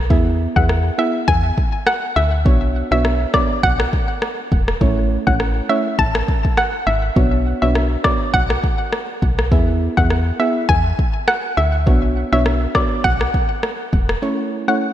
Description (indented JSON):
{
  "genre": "dancehall",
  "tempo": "102 BPM",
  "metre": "4/4",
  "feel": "swing 56% on 16ths",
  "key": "B dorian",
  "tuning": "A4 = 440 Hz",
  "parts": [
    { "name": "woody FM bass", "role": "bass", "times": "0.0-14.2 s", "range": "E1 to E2", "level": "-19 LUFS", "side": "equal", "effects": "none" },
    { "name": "soft round pluck", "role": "accompaniment", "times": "0.1-14.8 s", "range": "A3 to E5", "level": "-23 LUFS", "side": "right 2 dB", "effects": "chorus" },
    { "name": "afro-pop drum kit", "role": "drums", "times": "0.1-14.2 s", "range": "kick drum, rim click", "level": "-19 LUFS", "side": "equal", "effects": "vintage 12-bit sampler grit, gated reverb" },
    { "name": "hollow square pluck", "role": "melody", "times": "0.6-14.8 s", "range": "D5 to A5", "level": "-20 LUFS", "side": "equal", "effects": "chorus, ping-pong delay" }
  ],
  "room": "moderate lush hall reverb, RT60 2.9 s",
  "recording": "bright 1980s-style digital production",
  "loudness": "-15 LUFS",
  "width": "side -12 dB against mid",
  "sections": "0.0-14.9 A section",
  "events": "none",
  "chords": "0.1 E; 2.5 Bmadd9; 4.8 A; 7.2 Bmadd9; 9.5 E; 11.9 Bmadd9; 14.2 A"
}